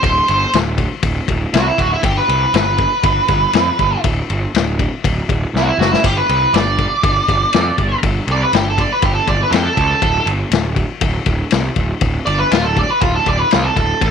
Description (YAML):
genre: blues rock power trio and southern rock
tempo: 120 BPM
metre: 4/4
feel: straight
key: unclear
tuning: A4 = 440 Hz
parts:
  - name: octave-fuzz lead guitar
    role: melody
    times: 0.0-14.1 s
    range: E4 to D5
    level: -16 LUFS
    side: right 2 dB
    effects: distortion
  - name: fuzz picked electric bass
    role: bass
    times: 0.0-14.1 s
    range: D1 to F2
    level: -18 LUFS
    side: right 1 dB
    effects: overdrive
  - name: vintage drum kit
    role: drums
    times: 0.0-14.1 s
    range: kick drum, ride cymbal, snare drum, splash cymbal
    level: -18 LUFS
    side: left 4 dB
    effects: none
room: small room ambience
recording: 1960s-style stereo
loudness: -13 LUFS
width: side -7 dB against mid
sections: 0.0-14.1 A section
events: lead electric guitar solo 0.0-14.1; drum fill 5.5-6.0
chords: 0.0 D7(no3); 2.0 G; 4.0 N.C.; 6.0 G5; 10.0 D5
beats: | 0.04 0.54 1.04 1.54 | 2.04 2.54 3.04 3.54 | 4.04 4.54 5.04 5.54 | 6.04 6.54 7.04 7.54 | 8.04 8.54 9.04 9.53 | 10.03 10.53 11.03 11.52 | 12.02 12.52 13.02 13.51 | 14.01